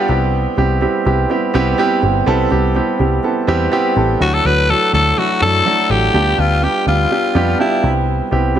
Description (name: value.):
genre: 1980s-style pop.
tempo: 124 BPM.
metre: 4/4.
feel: straight.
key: C major.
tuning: A4 = 440 Hz.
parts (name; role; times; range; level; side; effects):
growling tenor saxophone; melody; 0.0-0.1, 4.2-7.9 s; E4 to B4; -16 LUFS; left 2 dB; ping-pong delay.
dark grand piano; accompaniment; 0.0-8.6 s; F#3 to A4; -16 LUFS; right 3 dB; none.
vintage muted picked electric bass; bass; 0.1-8.6 s; G1 to F#2; -17 LUFS; left 1 dB; none.
room: light reverb, studio ambience.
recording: nothing above 10.6 kHz.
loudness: -13 LUFS.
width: side -10 dB against mid.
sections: 0.0-8.6 A section.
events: none.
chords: 0.1 Cmaj7; 4.2 Dadd9; 6.1 G7/D; 7.8 Cmaj7.